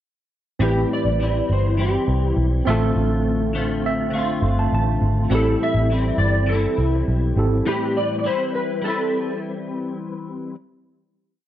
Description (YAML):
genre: indie pop, bedroom pop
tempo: 102 BPM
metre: 4/4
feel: straight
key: A minor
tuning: A4 = 439 Hz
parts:
  - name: clean lap steel guitar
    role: melody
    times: 0.6-9.4 s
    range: G4 to E5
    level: -24 LUFS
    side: equal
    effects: ensemble chorus, plate reverb, analog delay
  - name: clean electric guitar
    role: accompaniment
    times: 0.6-10.5 s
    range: A2 to B4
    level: -24 LUFS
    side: left 4 dB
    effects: ensemble chorus, vibrato effect
  - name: tine electric piano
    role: accompaniment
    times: 0.6-7.7 s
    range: C4 to A5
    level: -25 LUFS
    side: right 5 dB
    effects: overdrive, fast stereo tremolo, cassette tape, plate reverb
  - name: vintage muted picked electric bass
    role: bass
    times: 0.6-7.6 s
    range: G1 to C2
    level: -20 LUFS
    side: equal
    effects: none
room: moderate studio ambience, RT60 0.5 s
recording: none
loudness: -18 LUFS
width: side -12 dB against mid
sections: 0.6-10.0 A section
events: tine electric piano fill 3.5-5.3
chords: 0.6 Am7; 2.7 Dm7/A; 5.3 Am7; 7.7 Am9